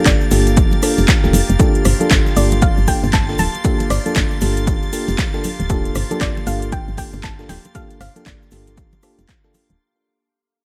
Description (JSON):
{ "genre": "deep house", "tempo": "117 BPM", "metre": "4/4", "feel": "swing 61% on 16ths", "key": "G minor", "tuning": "A4 = 439 Hz", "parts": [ { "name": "soft round pluck", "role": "melody", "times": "0.0-9.0 s", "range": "D5 to A5", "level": "-28 LUFS", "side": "equal", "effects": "chorus, tape echo" }, { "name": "airy breathy pad", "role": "sustained chords", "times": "0.0-9.8 s", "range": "Bb3 to C6", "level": "-32 LUFS", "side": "equal", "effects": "chorus, sidechain pumping" }, { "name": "mellow FM electric piano", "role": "stabs", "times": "0.0-9.8 s", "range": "Bb3 to A4", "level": "-24 LUFS", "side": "equal", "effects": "chorus, sidechain pumping, digital delay" }, { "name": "string machine, violins", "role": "texture", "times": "0.0-9.8 s", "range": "A6", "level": "-34 LUFS", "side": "equal", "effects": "ensemble chorus, sidechain pumping" }, { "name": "woody FM bass", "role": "bass", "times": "0.1-9.8 s", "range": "D1 to G1", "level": "-21 LUFS", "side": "equal", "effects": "sidechain pumping" }, { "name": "breakbeat sampler-style drum kit", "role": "drums", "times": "0.1-9.7 s", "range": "hi-hat, shaker, snare drum", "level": "-34 LUFS", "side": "equal", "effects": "none" }, { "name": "electronic kick drum", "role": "drums", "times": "0.1-9.4 s", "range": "none", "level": "-19 LUFS", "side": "equal", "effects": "overdrive" }, { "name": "house drum kit", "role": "drums", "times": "0.1-9.8 s", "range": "handclaps, hi-hat, rim click", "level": "-25 LUFS", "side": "equal", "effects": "overdrive" }, { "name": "cabasa", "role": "percussion", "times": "0.1-9.8 s", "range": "none", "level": "-37 LUFS", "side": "equal", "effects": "none" }, { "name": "congas", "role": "percussion", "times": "0.1-9.7 s", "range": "none", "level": "-28 LUFS", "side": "equal", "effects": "none" } ], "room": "little or no reverb", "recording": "vinyl crackle", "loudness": "-16 LUFS", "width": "mono", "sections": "0.0-9.8 A section", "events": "drop 0.0-9.8; fade-out 1.6-9.8", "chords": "0.0 Gm9" }